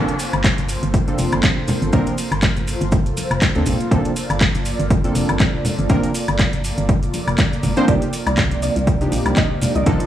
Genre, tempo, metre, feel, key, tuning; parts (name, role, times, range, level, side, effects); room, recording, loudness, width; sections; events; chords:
deep house; 121 BPM; 4/4; swing 56% on 16ths; G minor; A4 = 440 Hz
airy breathy pad; sustained chords; 0.0-10.1 s; Bb3 to D5; -27 LUFS; right 2 dB; chorus, phaser, sidechain pumping
warm analog keys; stabs; 0.0-10.1 s; F3 to C5; -22 LUFS; equal; chorus, sidechain pumping, tape echo
organ-like FM bass; bass; 0.0-10.0 s; F1 to D2; -22 LUFS; equal; sidechain pumping
house drum kit; drums; 0.1-10.1 s; handclaps, hi-hat, woodblock; -24 LUFS; left 1 dB; overdrive
maracas; percussion; 0.1-10.1 s; -34 LUFS; right 2 dB
electronic kick drum; drums; 0.4-10.0 s; -19 LUFS; equal; overdrive
congas; percussion; 0.6-9.7 s; -27 LUFS; left 1 dB; sidechain pumping on perc
soft round pluck; melody; 7.9-10.0 s; D5 to Eb5; -27 LUFS; right 1 dB; wide subtle chorus
little or no reverb; dry, gritty hardware recording, transformer saturation, studio ambience; -16 LUFS; side -11 dB against mid
0.0-10.1 A section
0.0 Gm11; 7.9 Cm11